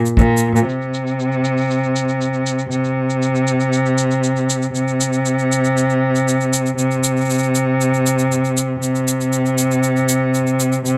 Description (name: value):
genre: folktronica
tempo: 118 BPM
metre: 4/4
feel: straight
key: unclear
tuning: A4 = 440 Hz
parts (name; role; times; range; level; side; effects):
- cabasa; drums; 0.1-10.9 s; none; -26 LUFS; equal; low-pass filter on perc, low-pass filter on snare, low-pass filter on room
- rich cello; bass; 0.2-11.0 s; Bb2 to C3; -18 LUFS; equal; none
room: little or no reverb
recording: dry, close 1970s-style studio recording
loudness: -18 LUFS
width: mono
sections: 0.7-11.0 A section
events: none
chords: none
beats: 0.17 | 0.67 1.18 1.69 2.20 | 2.71 3.22 3.73 4.23 | 4.74 5.25 5.76 6.27 | 6.78 7.28 7.79 8.30 | 8.81 9.32 9.83 10.34 | 10.84